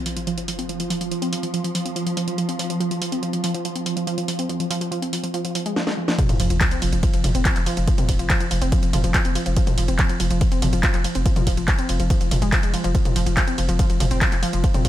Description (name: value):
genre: driving peak-time techno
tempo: 142 BPM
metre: 4/4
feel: straight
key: unclear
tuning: A4 = 440 Hz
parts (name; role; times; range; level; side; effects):
- warbly dusty pluck; riff; 0.0-14.9 s; F3 to C4; -25 LUFS; equal; chorus, tube saturation, sidechain pumping, tape echo
- swarming drone; drone; 0.3-5.8 s; F3; -30 LUFS; right 2 dB; built-in reverb, sidechain pumping
- sub drop; sound effects; 0.0-1.1, 6.2-7.9 s; none; -31 LUFS; equal; none
- techno drum kit; drums; 0.1-14.9 s; handclaps, hi-hat, ride cymbal, snare drum, toms; -26 LUFS; equal; none
- electronic kick drum; drums; 6.2-14.9 s; none; -20 LUFS; equal; none
- saturated sub bass; bass; 6.3-14.9 s; F1; -23 LUFS; equal; overdrive, sidechain pumping, low-pass filter
room: digital ambience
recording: none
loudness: -19 LUFS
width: side -13 dB against mid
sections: 0.0-6.2 A section; 6.2-14.9 B section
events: impact 0.0-1.1, 6.2-7.9; drum fill 5.8-6.2; drop 6.2-14.9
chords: none